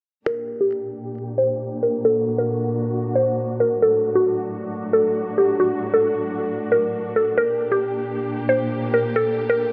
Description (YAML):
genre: hip hop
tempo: 135 BPM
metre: 4/4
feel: half-time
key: G harmonic minor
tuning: A4 = 441 Hz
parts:
  - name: mallet-like synth pluck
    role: melody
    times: 0.3-9.7 s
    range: F#4 to C5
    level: -22 LUFS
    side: equal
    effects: chorus, low-pass filter, digital delay
  - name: dark studio string section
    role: sustained chords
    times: 0.3-9.7 s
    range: A2 to G4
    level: -29 LUFS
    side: equal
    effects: low-pass filter
room: moderate plate reverb, RT60 3.3 s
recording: none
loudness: -21 LUFS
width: mono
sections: 0.3-9.7 A section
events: filter sweep 0.3-9.7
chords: 0.3 Gm; 3.8 D; 7.4 Gm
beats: | 0.27 0.71 1.16 1.60 | 2.05 2.49 2.94 3.38 | 3.82 4.27 4.71 5.16 | 5.60 6.05 6.49 6.93 | 7.38 7.82 8.27 8.71 | 9.16 9.60